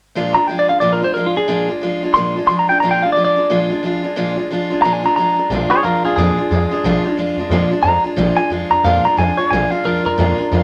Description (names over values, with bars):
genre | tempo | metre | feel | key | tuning
rockabilly | 179 BPM | 4/4 | swing 60% on 8ths | Bb mixolydian | A4 = 440 Hz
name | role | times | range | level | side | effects
picked steel-string acoustic guitar | accompaniment | 0.2-10.6 s | Bb2 to F4 | -20 LUFS | equal | none
clean electric guitar | melody | 0.3-10.6 s | F4 to C6 | -18 LUFS | equal | none
upright bass | bass | 5.5-10.6 s | Bb1 to F2 | -23 LUFS | equal | none
room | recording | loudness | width
moderate club reverb, RT60 0.5 s | faint mains hum | -16 LUFS | mono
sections
0.1-5.5 A section; 5.5-10.6 B section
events
none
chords
0.1 Bb7